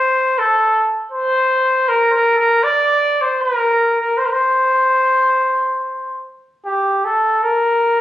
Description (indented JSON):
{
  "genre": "celtic folk",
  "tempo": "72-81 BPM",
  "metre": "3/4",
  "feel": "rubato",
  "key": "unclear",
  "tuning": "A4 = 439 Hz",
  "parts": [
    { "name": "mellow trumpet", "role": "solo", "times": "0.0-8.0 s", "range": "G4 to D5", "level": "-14 LUFS", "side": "equal", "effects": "none" }
  ],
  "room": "moderate recital hall reverb, RT60 1.4 s",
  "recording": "recorded on a phone in the room, club reverb",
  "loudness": "-14 LUFS",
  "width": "side -13 dB against mid",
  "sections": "0.0-6.6 A section; 6.6-8.0 B section",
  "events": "none",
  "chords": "none"
}